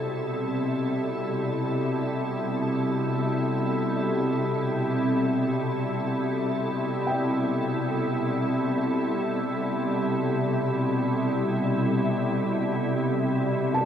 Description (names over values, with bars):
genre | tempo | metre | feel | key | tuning
ambient | free time | none | none | A minor | A4 = 439 Hz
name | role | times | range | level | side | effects
soft additive organ-like pad | sustained chords | 0.0-13.9 s | B2 to A4 | -24 LUFS | equal | ensemble chorus, built-in reverb
felt-muted upright piano | arpeggios | 0.0-13.9 s | E5 to A5 | -35 LUFS | right 1 dB | none
room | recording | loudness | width
wet cathedral reverb, RT60 6.8 s | none | -24 LUFS | side -9 dB against mid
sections
0.0-13.9 A section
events
none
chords
0.0 Am9